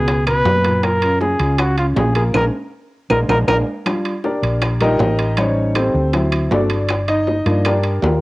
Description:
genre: Afro-Cuban jazz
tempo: 158 BPM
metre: 4/4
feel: straight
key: Eb major from 3.9 s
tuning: A4 = 440 Hz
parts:
  - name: mellow trumpet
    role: melody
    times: 0.0-3.6 s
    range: F4 to Cb5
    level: -18 LUFS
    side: equal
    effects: cassette tape
  - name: warm grand piano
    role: accompaniment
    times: 0.0-8.2 s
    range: Bb2 to Eb5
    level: -19 LUFS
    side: left 1 dB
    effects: cassette tape
  - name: woody fretless electric bass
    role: bass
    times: 0.0-8.2 s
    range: G1 to G2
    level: -19 LUFS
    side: equal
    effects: none
  - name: bongos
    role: percussion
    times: 0.1-8.2 s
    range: none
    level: -25 LUFS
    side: left 2 dB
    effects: none
  - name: timbales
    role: percussion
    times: 0.1-8.2 s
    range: none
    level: -25 LUFS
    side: right 4 dB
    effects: none
  - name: claves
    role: percussion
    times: 0.3-7.8 s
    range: none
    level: -28 LUFS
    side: left 3 dB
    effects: none
room: light reverb, small room ambience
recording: home recording on cassette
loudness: -15 LUFS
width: side -20 dB against mid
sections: 0.0-3.9 A section; 3.9-8.2 B section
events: band accent 2.3-3.9; drum fill 2.9-3.9; grand piano solo 3.9-8.2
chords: 0.1 Abm11/Db; 0.8 Gbmaj9; 2.3 Bbm7; 3.1 Bb7; 3.9 Ebmaj7; 5.4 Am7b5; 6.1 D7; 6.9 Gm7

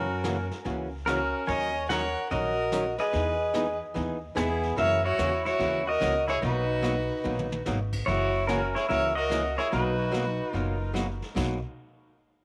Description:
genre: country, western swing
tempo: 146 BPM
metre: 4/4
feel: swing 65% on 8ths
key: B major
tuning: A4 = 440 Hz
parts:
  - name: pedal steel guitar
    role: melody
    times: 0.0-10.9 s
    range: B3 to G#5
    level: -30 LUFS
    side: equal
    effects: tape echo
  - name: rich fiddle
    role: second line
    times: 0.0-10.9 s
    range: E4 to D#5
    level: -37 LUFS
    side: equal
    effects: none
  - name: archtop guitar, miked and amplified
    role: accompaniment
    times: 0.0-11.6 s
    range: B2 to A#4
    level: -35 LUFS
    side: equal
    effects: none
  - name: upright bass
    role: bass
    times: 0.0-11.6 s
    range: F#1 to F#2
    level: -35 LUFS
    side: equal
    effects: none
  - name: vintage brush drum kit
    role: drums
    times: 0.2-11.7 s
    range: brushed snare drum, crash cymbal, hi-hat, kick drum, snare drum, toms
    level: -42 LUFS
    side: equal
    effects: none
room: moderate spring reverb, RT60 2.4 s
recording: none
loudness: -28 LUFS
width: mono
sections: 0.0-8.1 A section; 8.1-11.4 B section; 11.4-12.4 C section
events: drum fill 7.2-7.7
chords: 0.0 F#7; 1.5 D#m7; 3.1 Emaj7; 4.8 F#7; 6.4 Bmaj7; 8.1 F#7; 9.7 Bmaj7

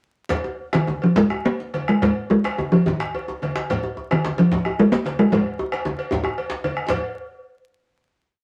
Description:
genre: west african traditional, West African drum ensemble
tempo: 139-164 BPM (dotted quarters)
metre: 12/8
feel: straight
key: unclear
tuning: A4 = 440 Hz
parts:
  - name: bombo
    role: percussion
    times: 0.3-7.0 s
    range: none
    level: -33 LUFS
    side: equal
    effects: none
  - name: congas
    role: percussion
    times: 0.3-7.0 s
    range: none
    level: -33 LUFS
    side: equal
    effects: none
  - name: cowbell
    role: percussion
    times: 0.3-7.0 s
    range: none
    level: -32 LUFS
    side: equal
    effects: none
  - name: djembe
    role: percussion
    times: 0.3-7.0 s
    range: none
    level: -36 LUFS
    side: equal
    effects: none
  - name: djembe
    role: percussion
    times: 0.3-7.0 s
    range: none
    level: -31 LUFS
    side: equal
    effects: none
  - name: talking drum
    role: melody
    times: 0.7-6.6 s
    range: Eb3 to Bb3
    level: -20 LUFS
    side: equal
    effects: none
room: moderate studio ambience, RT60 0.5 s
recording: vinyl crackle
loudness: -21 LUFS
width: mono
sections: 0.3-6.9 A section; 6.9-8.4 final hit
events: speeding up 0.3-8.4; drum fill 5.3-6.9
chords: none

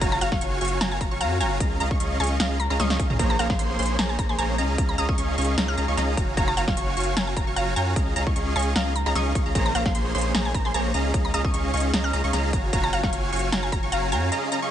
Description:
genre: future bass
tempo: 151 BPM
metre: 4/4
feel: swing 53% on 16ths, half-time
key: Db major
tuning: A4 = 435 Hz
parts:
  - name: shimmering ambient pad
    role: sustained chords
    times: 0.0-14.7 s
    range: Db3 to Bb4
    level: -35 LUFS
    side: equal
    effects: chorus, built-in reverb, sidechain pumping
  - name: wide unison pluck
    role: arpeggios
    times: 0.0-14.7 s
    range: Bb5 to Db6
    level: -32 LUFS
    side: right 2 dB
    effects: sidechain pumping
  - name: dense compressed supersaw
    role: riff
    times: 0.0-14.7 s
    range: Bb3 to Db6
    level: -27 LUFS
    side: right 1 dB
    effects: sidechain pumping
  - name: saturated sub bass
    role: bass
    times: 0.0-14.3 s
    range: Gb1 to Gb2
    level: -27 LUFS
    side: equal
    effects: tube saturation, sidechain pumping
  - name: big-room dance drum kit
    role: drums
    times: 0.0-14.6 s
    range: hi-hat, snare drum, toms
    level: -29 LUFS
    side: equal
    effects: overdrive, small room reverb
  - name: electronic kick drum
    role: drums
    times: 0.0-13.8 s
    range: none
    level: -26 LUFS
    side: equal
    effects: overdrive, small room reverb
  - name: mallet-like synth pluck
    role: melody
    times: 0.1-14.3 s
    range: F5 to F6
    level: -31 LUFS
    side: left 1 dB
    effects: chorus, sidechain pumping, tape echo
room: digital ambience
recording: nothing above 10.3 kHz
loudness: -21 LUFS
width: side -10 dB against mid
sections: 0.0-14.7 A section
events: drum fill 2.8-3.2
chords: 0.0 Gbmaj7; 1.6 Db69; 3.2 Bbm7; 4.6 Db69; 6.2 Gbmaj7; 8.0 Db69; 9.6 Bbm7; 10.9 Db69; 12.5 Gbmaj7

